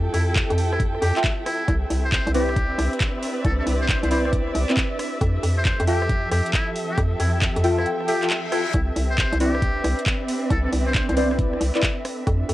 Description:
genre	UK garage, two-step garage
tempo	136 BPM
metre	4/4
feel	swing 66% on 16ths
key	C major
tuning	A4 = 440 Hz
part	ethereal airy pad	sustained chords	0.0-12.5 s	C4 to E5	-35 LUFS	equal	ensemble chorus, built-in reverb, sidechain pumping
part	hollow knocking FM bass	bass	0.0-12.5 s	C2 to F2	-23 LUFS	equal	none
part	dark chamber string section	texture	0.0-12.5 s	F3 to G5	-29 LUFS	right 1 dB	sidechain pumping
part	trumpet with metal mute	melody	0.1-11.4 s	E4 to C5	-29 LUFS	equal	none
part	garage drum kit	drums	0.1-12.5 s	handclaps, hi-hat, rim click	-28 LUFS	equal	overdrive
part	electronic kick drum	drums	0.4-12.4 s	none	-24 LUFS	equal	overdrive
part	deep mellow chord stab	stabs	1.2-11.8 s	C4 to G5	-24 LUFS	equal	chorus, analog delay
part	reverse cymbal	sound effects	8.1-8.7 s	none	-33 LUFS	left 7 dB	none
room	little or no reverb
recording	dry, gritty hardware recording, cassette tape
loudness	-19 LUFS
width	side -16 dB against mid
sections	0.0-12.5 A section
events	reverse cymbal 8.1-8.7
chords	0.0 Fmaj9; 1.7 Cmaj9; 5.2 Fmaj9; 8.7 Cmaj9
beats	0.36 0.80 1.24 | 1.68 2.12 2.56 3.01 | 3.45 3.89 4.33 4.77 | 5.21 5.65 6.09 6.54 | 6.98 7.42 7.86 8.30 | 8.74 9.18 9.62 10.06 | 10.51 10.95 11.39 11.83 | 12.27

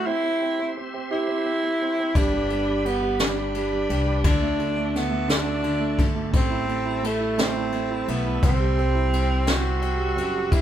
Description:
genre	six-eight pop ballad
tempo	57 BPM (dotted quarters)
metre	6/8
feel	straight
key	unclear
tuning	A4 = 440 Hz
part	breathy tenor saxophone	melody	0.0-10.6 s	A3 to F#4	-25 LUFS	right 1 dB	none
part	warm baby grand piano	accompaniment	0.0-10.6 s	D3 to G4	-28 LUFS	right 4 dB	none
part	bright tonewheel organ	sustained chords	0.0-10.6 s	G3 to D6	-35 LUFS	equal	chorus vibrato, slow rotary speaker
part	upright bass	bass	2.2-10.6 s	F#1 to D2	-28 LUFS	left 1 dB	none
part	jazz brush drum kit	drums	2.2-10.6 s	kick drum, ride cymbal, snare drum	-26 LUFS	left 1 dB	none
room	moderate large studio reverb, RT60 0.9 s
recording	band playing live in one room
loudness	-21 LUFS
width	side -10 dB against mid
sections	0.0-10.6 A section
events	none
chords	0.1 C; 2.2 G; 4.2 Dadd9; 6.3 Am7; 8.4 C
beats	| 0.06 1.11 | 2.15 3.20 | 4.25 5.29 | 6.34 7.39 | 8.43 9.48 | 10.52

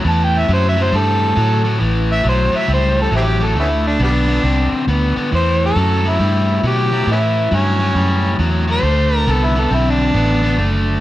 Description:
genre	electric blues shuffle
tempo	137 BPM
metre	4/4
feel	swing 65% on 8ths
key	unclear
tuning	A4 = 440 Hz
part	biting overdriven guitar	riff	0.0-11.0 s	A2 to C4	-19 LUFS	left 1 dB	none
part	vintage muted fingered electric bass	bass	0.0-11.0 s	F#1 to B2	-17 LUFS	equal	none
part	overdriven harmonica	melody	0.1-10.7 s	G3 to A5	-19 LUFS	equal	plate reverb
room	light reverb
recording	none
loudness	-13 LUFS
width	side -15 dB against mid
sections	0.0-1.8 A section; 1.8-11.0 A section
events	harmonica solo 0.0-1.8, 1.8-11.0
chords	0.0 A7(no3); 1.8 A7; 3.6 D5; 5.3 A7; 8.8 D7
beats	| 0.05 0.49 0.93 1.37 | 1.80 2.24 2.68 3.12 | 3.56 4.00 4.44 4.88 | 5.32 5.76 6.20 6.64 | 7.08 7.51 7.95 8.39 | 8.83 9.27 9.71 10.15 | 10.59

